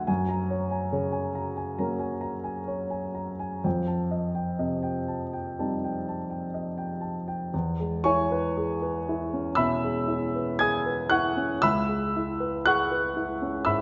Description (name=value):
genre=classical, impressionist solo piano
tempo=57-70 BPM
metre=4/4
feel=rubato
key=E lydian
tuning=A4 = 440 Hz
part: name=warm grand piano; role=solo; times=0.0-13.8 s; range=C#2 to G#6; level=-28 LUFS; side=equal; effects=none
room=wet scoring stage reverb, RT60 1.5 s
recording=nothing above 7.7 kHz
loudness=-28 LUFS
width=mono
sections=0.0-7.5 A section; 7.5-13.8 B section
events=none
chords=0.1 F#add9; 3.6 F9; 7.5 E6; 11.6 C#m7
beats=| 0.08 0.94 1.79 2.69 | 3.65 4.61 5.59 6.54 | 7.53 8.57 9.59 10.62 | 11.65 12.68 13.68